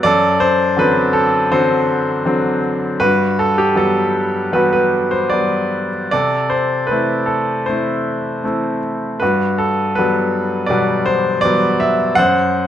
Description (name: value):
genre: classical, lyrical solo piano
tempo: 73-82 BPM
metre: 4/4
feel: rubato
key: unclear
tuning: A4 = 439 Hz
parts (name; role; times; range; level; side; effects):
- bright grand piano; solo; 0.0-12.7 s; F#2 to F#5; -14 LUFS; equal; none
room: moderate recital hall reverb, RT60 1.4 s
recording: none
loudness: -14 LUFS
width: side -10 dB against mid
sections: 0.0-12.7 A section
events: none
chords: 0.0 D7/F#; 3.0 Gmaj7; 6.1 C6; 9.2 Gmaj7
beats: | 0.05 0.78 1.52 2.26 | 3.00 3.76 4.53 5.32 | 6.13 6.92 7.68 8.44 | 9.22 9.98 10.71 11.45 | 12.18